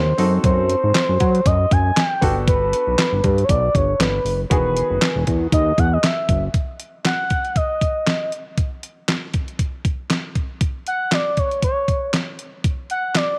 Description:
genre	early-eighties boogie funk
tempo	118 BPM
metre	4/4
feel	swing 56% on 16ths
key	E major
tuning	A4 = 440 Hz
part	expressive synth lead	melody	0.0-13.4 s	B4 to G#5	-23 LUFS	equal	chorus, slapback echo
part	clear grand piano	accompaniment	0.0-6.5 s	D#3 to A4	-31 LUFS	equal	none
part	fat analog bass	bass	0.0-6.5 s	E1 to F#3	-22 LUFS	equal	none
part	detuned 8-bit digital drum machine	drums	0.2-13.3 s	handclaps, hi-hat, kick drum, snare drum	-23 LUFS	equal	none
room	digital ambience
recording	none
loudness	-20 LUFS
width	mono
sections	0.0-6.5 A section; 6.5-13.4 B section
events	none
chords	0.2 F#dim7; 2.2 Gmaj9; 4.5 Emaj9; 6.5 N.C.

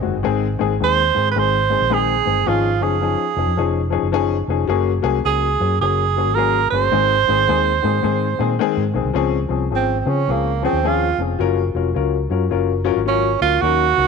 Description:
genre	uptempo 1960s-style soul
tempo	108 BPM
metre	4/4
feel	swing 63% on 8ths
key	Db major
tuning	A4 = 440 Hz
part	breathy tenor saxophone	melody	0.0-14.1 s	Bb3 to C5	-18 LUFS	right 11 dB	none
part	dark upright piano	accompaniment	0.0-14.1 s	Eb3 to Bb4	-20 LUFS	left 13 dB	none
part	vintage muted fingered electric bass	bass	0.0-14.1 s	F1 to Db3	-22 LUFS	equal	none
room	light reverb, studio ambience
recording	1960s-style stereo with parts hard left and right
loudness	-16 LUFS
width	side -5 dB against mid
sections	0.0-9.2 A section; 9.2-14.1 B section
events	tenor saxophone solo 9.2-14.1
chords	0.0 Ab; 2.5 Dbadd9; 4.7 Gbadd9; 6.9 Ab; 9.2 Dbmaj7; 11.4 Gbmaj7

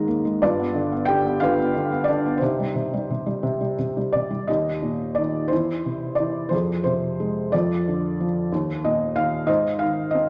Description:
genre	classical, lyrical solo piano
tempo	59 BPM (dotted quarters)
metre	6/8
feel	uneven beats, rubato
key	C minor, Eb major from 4.5 s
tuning	A4 = 440 Hz
part	felt-muted upright piano	solo	0.0-10.3 s	Eb2 to Bb5	-23 LUFS	equal	none
room	moderate concert hall reverb, RT60 1.8 s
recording	none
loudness	-23 LUFS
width	mono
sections	0.0-4.5 A section; 4.5-10.3 B section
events	none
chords	0.4 G7; 2.4 Cm; 4.5 Eb; 5.5 C/E; 6.5 Fm; 7.5 Dm/F; 8.5 Eb5; 9.5 Ab

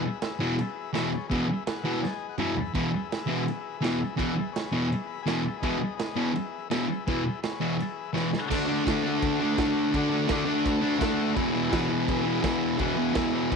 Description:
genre	garage rock duo or trio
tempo	167 BPM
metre	4/4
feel	straight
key	E major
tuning	A4 = 439 Hz
part	overdriven combo organ	sustained chords	0.0-13.6 s	F#4 to B5	-36 LUFS	left 11 dB	none
part	raw garage drum kit	drums	0.2-13.6 s	crash cymbal, kick drum, snare drum, splash cymbal, toms	-33 LUFS	right 3 dB	none
part	thick fuzz guitar	riff	0.4-13.6 s	E2 to D4	-26 LUFS	equal	distortion
room	light reverb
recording	1960s-style stereo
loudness	-25 LUFS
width	side -5 dB against mid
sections	0.0-8.5 A section; 8.5-13.6 B section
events	transistor combo organ fill 1.7-2.7, 4.9-5.6, 10.6-11.4; drum fill 2.0-2.7, 8.1-8.5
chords	0.0 E; 8.5 D; 11.4 E

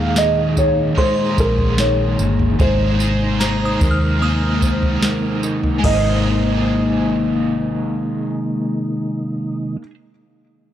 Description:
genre	dream pop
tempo	74 BPM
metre	4/4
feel	straight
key	Ab major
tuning	A4 = 440 Hz
part	felt-muted upright piano	melody	0.0-9.8 s	Bb4 to F5	-22 LUFS	right 2 dB	tape echo
part	cranked stack guitar	accompaniment	0.0-9.9 s	Eb3 to C5	-24 LUFS	right 2 dB	overdrive, tremolo, wide subtle chorus
part	percussive tonewheel organ	sustained chords	0.0-9.8 s	Bb2 to Ab4	-23 LUFS	equal	chorus vibrato, slow rotary speaker
part	mellow electric guitar	arpeggios	0.0-9.9 s	Eb3 to C5	-23 LUFS	left 5 dB	ensemble chorus, tape echo
part	vintage muted fingered electric bass	bass	0.0-9.8 s	G1 to Eb2	-22 LUFS	equal	tube saturation
part	soft vintage rhythm box	drums	0.2-6.0 s	crash cymbal, kick drum, snare drum, tambourine, toms	-20 LUFS	equal	none
part	glassy synth bell	texture	1.0-9.8 s	Bb5 to F6	-29 LUFS	right 1 dB	chorus, tremolo, tape echo
room	digital ambience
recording	dry, gritty hardware recording, cassette tape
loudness	-16 LUFS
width	side -11 dB against mid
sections	0.0-5.8 A section; 5.8-9.1 B section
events	none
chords	0.0 Ebsus4; 2.6 Abadd9

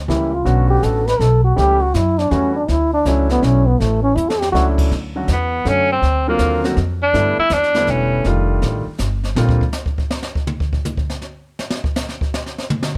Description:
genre	jazz, small-group swing and bop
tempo	162 BPM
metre	3/4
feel	swing 65% on 8ths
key	D major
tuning	A4 = 441 Hz
part	upright bass	bass	0.0-9.6 s	E1 to G2	-20 LUFS	equal	none
part	mellow trombone	second line	0.1-4.7 s	A3 to B4	-19 LUFS	equal	none
part	warm concert grand piano	accompaniment	0.1-9.6 s	D3 to G4	-24 LUFS	equal	none
part	jazz brush drum kit	drums	0.1-13.0 s	brushed snare drum, crash cymbal, hi-hat, kick drum, snare drum, toms	-25 LUFS	equal	none
part	clear tenor saxophone	melody	5.3-8.3 s	A#3 to E4	-19 LUFS	equal	none
room	light reverb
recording	dark, warm production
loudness	-17 LUFS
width	mono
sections	0.0-4.9 A section; 4.9-13.0 A section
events	trombone solo 0.0-4.9; drum fill 4.2-4.5; tenor saxophone solo 4.9-13.0; drum solo 9.4-13.0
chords	0.5 Bm9; 1.6 A7; 2.7 Dmaj9; 4.9 Dmaj7; 6.0 D7alt; 7.1 G69; 8.3 F13; 9.4 Bb69; 10.5 N.C.

